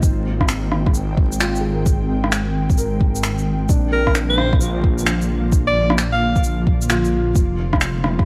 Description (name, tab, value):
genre	future garage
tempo	131 BPM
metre	4/4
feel	swing 65% on 16ths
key	unclear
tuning	A4 = 440 Hz
part	felt-muted upright piano	accompaniment	0.0-8.3 s	D4 to Bb4	-31 LUFS	equal	sidechain pumping, dub echo
part	ethereal airy pad	sustained chords	0.0-8.3 s	D3 to G5	-27 LUFS	equal	ensemble chorus, built-in reverb, vintage 12-bit sampler grit, sidechain pumping
part	swelling detuned saw bass	bass	0.0-8.3 s	F1 to Bb1	-24 LUFS	equal	sidechain pumping
part	electronic kick drum	drums	0.0-8.3 s	none	-20 LUFS	equal	none
part	electronic shaker, rim click and finger snaps	drums	0.0-8.3 s	none	-25 LUFS	equal	none
part	clear alto saxophone	melody	3.9-6.4 s	Bb4 to F5	-25 LUFS	equal	dub echo
room	light reverb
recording	vinyl crackle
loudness	-18 LUFS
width	mono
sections	0.0-8.3 A section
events	none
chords	0.0 Abmaj7; 3.7 Bb; 7.4 Fm7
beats	| 0.03 0.49 0.95 1.40 | 1.86 2.32 2.78 3.24 | 3.69 4.15 4.61 5.07 | 5.53 5.98 6.44 6.90 | 7.36 7.82